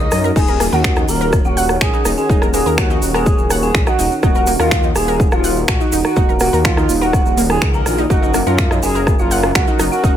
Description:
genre	melodic techno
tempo	124 BPM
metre	4/4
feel	straight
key	Eb minor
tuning	A4 = 440 Hz
part	expressive portamento lead	melody	0.0-10.2 s	F4 to Eb5	-20 LUFS	equal	analog chorus, sidechain pumping, ping-pong delay
part	dark detuned synth bell	second line	0.0-10.2 s	F5 to Eb6	-25 LUFS	equal	chorus, sidechain pumping, ping-pong delay
part	sweeping resonant pad	sustained chords	0.0-10.2 s	Eb3 to Bb4	-24 LUFS	equal	chorus, phaser, sidechain pumping
part	swelling detuned saw bass	bass	0.0-10.2 s	Eb1 to Gb2	-20 LUFS	equal	tube saturation, sidechain pumping
part	cabasa	percussion	0.0-10.1 s	none	-29 LUFS	right 4 dB	none
part	techno drum kit	drums	0.1-9.9 s	crash cymbal, finger snaps, hi-hat, rim click	-21 LUFS	equal	small room reverb, sidechain pumping on hats, sidechain pumping on cymbals
part	wide unison pluck	arpeggios	0.2-10.1 s	Bb3 to Gb6	-23 LUFS	equal	sidechain pumping, ping-pong delay
part	electronic kick drum	drums	0.4-10.1 s	none	-16 LUFS	equal	small room reverb
room	light reverb, digital ambience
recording	none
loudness	-12 LUFS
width	side -10 dB against mid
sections	0.0-10.2 A section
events	none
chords	0.4 Ebm7; 8.1 Gb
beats	| 0.36 0.84 1.33 1.81 | 2.29 2.78 3.26 3.75 | 4.23 4.71 5.20 5.68 | 6.17 6.65 7.13 7.62 | 8.10 8.59 9.07 9.55 | 10.04

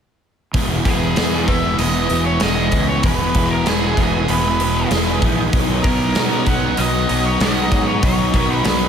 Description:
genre	rock, shoegaze and dream pop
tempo	96 BPM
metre	4/4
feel	straight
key	unclear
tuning	A4 = 443 Hz
part	picked twelve-string acoustic guitar	arpeggios	0.5-8.9 s	D#3 to G#4	-28 LUFS	left 2 dB	analog chorus, analog delay
part	crunchy overdriven guitar	riff	0.5-8.9 s	B2 to E4	-22 LUFS	right 12 dB	reverse reverb
part	thick fuzz guitar	riff	0.5-8.9 s	E2 to B3	-23 LUFS	left 10 dB	distortion, wide subtle chorus
part	fuzz fingered electric bass	bass	0.5-8.9 s	E1 to B2	-21 LUFS	equal	overdrive
part	big rock drum kit	drums	0.5-8.8 s	hi-hat, kick drum, snare drum	-20 LUFS	equal	none
part	phased analog pad	sustained chords	0.6-8.9 s	B4 to D#6	-29 LUFS	equal	phaser, chorus
part	octave-fuzz lead guitar	melody	0.9-8.9 s	G#4 to F#5	-23 LUFS	equal	distortion, analog delay
room	light reverb, studio ambience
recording	none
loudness	-15 LUFS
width	side -8 dB against mid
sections	0.5-8.9 A section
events	none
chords	0.5 Emaj7; 5.5 Bmaj9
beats	| 0.54 1.17 1.79 2.42 | 3.04 3.67 4.29 4.92 | 5.54 6.16 6.79 7.41 | 8.03 8.65

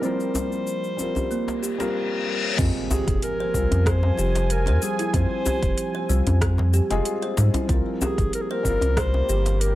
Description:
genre	organic downtempo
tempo	94 BPM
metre	4/4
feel	swing 53% on 16ths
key	unclear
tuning	A4 = 441 Hz
part	mellow clarinet	melody	0.0-9.8 s	Ab4 to C5	-28 LUFS	left 1 dB	tape echo
part	felt-muted upright piano	accompaniment	0.0-9.8 s	F3 to Bb4	-31 LUFS	left 4 dB	sidechain pumping, tape echo
part	warm analog pad	sustained chords	0.0-9.8 s	F3 to Ab5	-34 LUFS	right 2 dB	chorus, sidechain pumping
part	kalimba	arpeggios	0.0-9.5 s	G3 to C5	-29 LUFS	right 2 dB	tape echo
part	deep house drum kit	drums	0.0-9.7 s	cabasa, crash cymbal, hi-hat, rim click	-31 LUFS	equal	overdrive
part	djembe	percussion	0.3-9.6 s	none	-29 LUFS	left 1 dB	none
part	reverse cymbal and impact	sound effects	1.7-5.1 s	none	-30 LUFS	left 3 dB	none
part	warm sub bass	bass	2.6-9.8 s	F1 to Ab2	-21 LUFS	equal	transformer saturation, sidechain pumping
part	electronic kick drum	drums	2.6-9.1 s	none	-26 LUFS	equal	overdrive
room	small room reverb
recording	dry, gritty hardware recording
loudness	-20 LUFS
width	side -15 dB against mid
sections	0.0-2.6 A section; 2.6-9.8 B section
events	reverse cymbal 1.7-2.6; impact 2.6-5.1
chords	0.0 C7sus4; 2.6 Fm; 7.7 C7sus4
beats	| 0.04 0.68 1.31 1.95 | 2.59 3.23 3.87 4.51 | 5.14 5.78 6.42 7.06 | 7.70 8.34 8.97 9.61

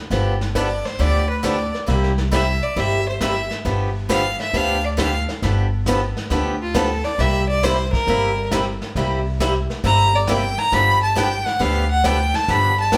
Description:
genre	country, western swing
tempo	136 BPM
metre	4/4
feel	swing 68% on 8ths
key	G mixolydian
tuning	A4 = 440 Hz
part	picked swing-style acoustic guitar	accompaniment	0.1-13.0 s	C3 to G4	-26 LUFS	equal	none
part	upright bass	bass	0.1-13.0 s	G1 to D2	-24 LUFS	equal	none
part	vintage brush drum kit	drums	0.1-13.0 s	brushed snare drum, hi-hat, kick drum, snare drum	-30 LUFS	equal	none
part	clear fiddle	melody	0.6-13.0 s	F4 to B5	-23 LUFS	equal	none
room	wet large studio reverb, RT60 0.9 s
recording	band playing live in one room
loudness	-20 LUFS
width	mono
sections	0.1-13.0 A section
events	fiddle solo 0.1-13.0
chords	0.1 G7; 1.9 C7; 3.6 G7; 7.2 C7; 10.7 G7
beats	| 0.11 0.55 0.99 1.44 | 1.88 2.32 2.76 3.21 | 3.65 4.09 4.53 4.98 | 5.42 5.86 6.30 6.74 | 7.18 7.63 8.07 8.51 | 8.95 9.39 9.83 10.28 | 10.72 11.16 11.60 12.04 | 12.48 12.93

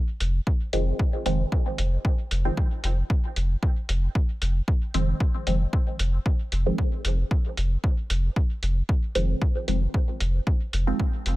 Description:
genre	dub techno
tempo	114 BPM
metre	4/4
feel	swing 54% on 16ths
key	F minor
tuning	A4 = 440 Hz
part	warm sub bass	bass	0.2-11.4 s	F1	-23 LUFS	equal	sidechain pumping
part	electronic hi-hat	drums	0.2-11.4 s	none	-32 LUFS	equal	none
part	electronic kick drum	drums	0.5-11.1 s	none	-23 LUFS	equal	none
part	filtered dub chord stab	stabs	0.7-11.0 s	Eb3 to C4	-30 LUFS	right 1 dB	phaser, sidechain pumping, dub echo
room	digital ambience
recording	none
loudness	-22 LUFS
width	side -18 dB against mid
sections	0.0-11.4 A section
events	none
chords	0.0 Fm7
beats	0.47 0.99 | 1.52 2.05 2.57 3.10 | 3.63 4.15 4.68 5.21 | 5.73 6.26 6.79 7.31 | 7.84 8.36 8.89 9.42 | 9.94 10.47 10.99

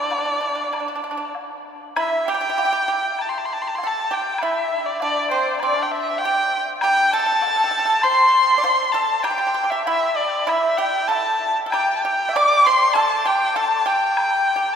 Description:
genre	chinese traditional, Chinese chamber ensemble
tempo	98 BPM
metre	4/4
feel	straight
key	unclear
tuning	A4 = 441 Hz
part	rich erhu	melody	0.0-14.8 s	C5 to D6	-20 LUFS	equal	none
part	pipa	second line	0.0-14.7 s	C4 to E5	-24 LUFS	right 3 dB	none
part	woodblock	percussion	0.1-14.3 s	none	-33 LUFS	left 2 dB	none
part	breathy mellow dizi	second line	2.0-14.7 s	D5 to G6	-24 LUFS	left 4 dB	none
room	wet cathedral reverb, RT60 5.3 s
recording	recorded in a church or concert hall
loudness	-17 LUFS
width	side -7 dB against mid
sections	0.0-2.0 A section; 2.0-14.8 B section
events	none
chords	none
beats	0.11 0.73 1.35 | 1.97 2.58 3.19 3.80 | 4.40 5.01 5.61 6.22 | 6.82 7.42 8.03 8.63 | 9.24 9.85 10.47 11.09 | 11.71 12.33 12.94 13.55 | 14.16

